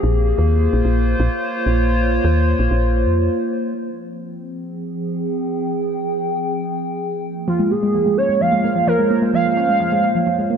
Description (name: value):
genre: IDM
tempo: 129 BPM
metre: 4/4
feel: straight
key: F minor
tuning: A4 = 437 Hz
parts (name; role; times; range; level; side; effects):
- warbly tape-like pad; sustained chords; 0.0-10.6 s; F3 to G5; -21 LUFS; equal; chorus, built-in reverb, vintage 12-bit sampler grit
- woody FM bass; bass; 0.0-3.3 s; Bb1 to F2; -17 LUFS; equal; none
- warbly nostalgic lead; melody; 7.5-10.6 s; F4 to F5; -18 LUFS; right 2 dB; analog chorus, cassette tape, digital delay
- warbly dusty pluck; arpeggios; 7.5-10.6 s; F3 to Db4; -19 LUFS; right 1 dB; chorus, vintage 12-bit sampler grit, digital delay
room: moderate echo chamber reverb, RT60 2.1 s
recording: none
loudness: -16 LUFS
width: side -7 dB against mid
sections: 0.0-3.8 A section; 3.8-10.6 B section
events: break 3.3-3.8; filter sweep on ambient pad 3.8-10.6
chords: 0.0 Bbm9; 3.8 Fmadd9; 7.2 Bbm9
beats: | 0.04 0.50 0.97 1.43 | 1.90 2.36 2.83 3.29 | 3.76 4.22 4.69 5.15 | 5.62 6.08 6.55 7.01 | 7.48 7.94 8.41 8.87 | 9.34 9.80 10.27